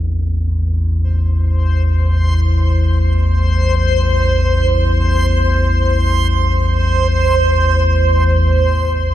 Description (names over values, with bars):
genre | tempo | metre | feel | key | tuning
ambient | free time | none | none | A minor | A4 = 440 Hz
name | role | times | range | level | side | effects
deep rumbling drone | drone | 0.0-9.1 s | A1 to E2 | -13 LUFS | equal | built-in reverb, wide subtle chorus
backwards swelling texture | texture | 1.5-8.6 s | C5 | -18 LUFS | right 2 dB | built-in reverb
room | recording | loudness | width
wet huge ambient reverb, RT60 7.8 s | in a vast, echoing space, cassette tape | -12 LUFS | side -12 dB against mid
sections
0.0-8.5 A section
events
none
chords
0.0 Am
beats
free time